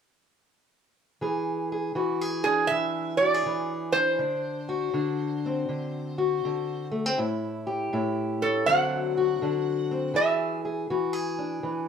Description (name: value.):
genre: acoustic country blues, solo or duo.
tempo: 80 BPM.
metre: 4/4.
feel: swing 66% on 8ths.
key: unclear.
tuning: A4 = 440 Hz.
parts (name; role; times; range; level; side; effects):
fingerpicked steel-string acoustic guitar; accompaniment; 1.2-11.9 s; A2 to G#4; -27 LUFS; left 2 dB; none.
metal-body resonator slide guitar; melody; 2.4-10.9 s; G#4 to F#5; -24 LUFS; right 3 dB; none.
room: light reverb.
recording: band playing live in one room.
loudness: -24 LUFS.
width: side -7 dB against mid.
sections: 1.2-11.9 A section.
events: none.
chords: 1.2 E7; 4.2 D7; 7.2 A7; 8.7 D7; 10.1 E7.